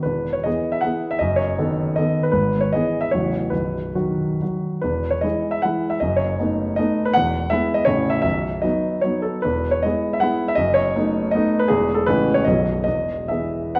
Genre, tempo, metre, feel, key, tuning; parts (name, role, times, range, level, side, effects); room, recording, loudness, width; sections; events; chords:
classical, romantic triple-time dance for piano with dotted rhythms; 128-175 BPM; 3/4; rubato; E major; A4 = 441 Hz
warm baby grand piano; solo; 0.0-13.8 s; A0 to F#5; -21 LUFS; equal
wet recital hall reverb, RT60 1.7 s; worn, warbling old tape, cassette tape, warbly pitch drift; -21 LUFS; mono
0.0-4.8 A section; 4.8-13.8 A section
0.1 E; 1.2 B7/F#; 2.3 E/G#; 3.1 F#m7/A; 3.5 B; 4.8 E; 6.0 B7/F#; 7.1 E; 7.9 A; 8.3 B; 9.4 E; 10.6 B7/F#; 11.7 E; 12.1 Amaj7; 12.5 B7; 12.9 E